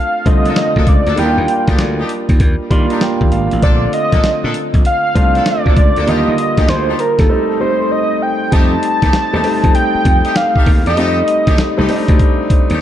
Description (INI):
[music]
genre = R&B, new jack swing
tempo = 98 BPM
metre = 4/4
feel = swing 64% on 16ths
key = unclear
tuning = A4 = 440 Hz
[part]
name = wide unison lead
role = melody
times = 0.0-12.1 s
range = A4 to A5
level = -16 LUFS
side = right 1 dB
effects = none
[part]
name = warm concert grand piano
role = accompaniment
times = 0.0-12.8 s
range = D3 to C6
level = -18 LUFS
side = equal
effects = none
[part]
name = slap bass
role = bass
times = 0.3-12.8 s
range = Ab1 to Eb3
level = -17 LUFS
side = equal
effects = none
[part]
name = dusty soul sampler-style drum kit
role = drums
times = 0.3-12.8 s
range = hi-hat, kick drum, snare drum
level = -13 LUFS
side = equal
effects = none
[part]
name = clear horn section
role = stabs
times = 0.5-12.8 s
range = A3 to A4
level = -25 LUFS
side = left 2 dB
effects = tape echo
[sound]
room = moderate lush hall reverb, RT60 1.6 s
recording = dark, warm production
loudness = -11 LUFS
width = side -11 dB against mid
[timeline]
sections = 0.0-8.5 A section; 8.5-12.8 B section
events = grand piano fill 2.4-3.6; silent gap 7.3-8.5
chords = 0.0 Bbmaj7; 1.2 Ebmaj7; 3.6 Bbmaj7; 6.1 Ebmaj7; 7.3 Am7b5/G; 8.5 F9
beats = 0.56 | 1.18 1.79 2.40 3.01 | 3.63 4.24 4.85 5.46 | 6.08 6.69 7.30 7.91 | 8.52 9.14 9.75 10.36 | 10.97 11.59 12.20 12.81